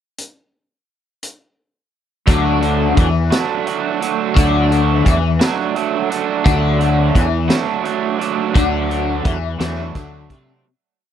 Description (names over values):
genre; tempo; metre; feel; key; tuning
indie rock; 57 BPM (dotted quarters); 6/8; straight; D major; A4 = 440 Hz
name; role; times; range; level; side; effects
raw garage drum kit; drums; 0.2-10.5 s; hi-hat, kick drum, snare drum; -17 LUFS; equal; none
crunchy overdriven guitar; riff; 2.3-10.7 s; F#3 to F#4; -19 LUFS; right 9 dB; lush chorus
overdriven electric guitar; riff; 2.3-10.6 s; D3 to C4; -19 LUFS; left 10 dB; phaser
fuzz fingered electric bass; bass; 2.3-10.6 s; D2 to C3; -19 LUFS; equal; overdrive
room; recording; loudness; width
little or no reverb; dry, close 1970s-style studio recording; -14 LUFS; side -9 dB against mid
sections
0.2-2.3 pickup bar; 2.3-10.6 verse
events
fade-out 8.6-10.6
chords
0.2 N.C.; 2.3 D